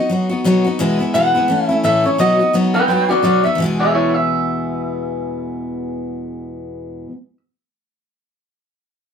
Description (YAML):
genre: rock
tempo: 172 BPM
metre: 4/4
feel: swing 59% on 8ths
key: E major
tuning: A4 = 442 Hz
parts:
  - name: electric guitar through a small old amp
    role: melody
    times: 0.0-7.4 s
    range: E4 to G5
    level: -16 LUFS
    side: equal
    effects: none
  - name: picked steel-string acoustic guitar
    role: accompaniment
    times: 0.0-7.2 s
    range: E2 to G#4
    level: -18 LUFS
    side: left 1 dB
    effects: none
room: moderate studio reverb, RT60 0.5 s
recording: band playing live in one room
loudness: -14 LUFS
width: side -7 dB against mid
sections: 0.8-3.6 A section; 3.6-6.4 B section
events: none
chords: 0.0 B; 0.8 E; 1.5 A; 2.2 B; 3.6 E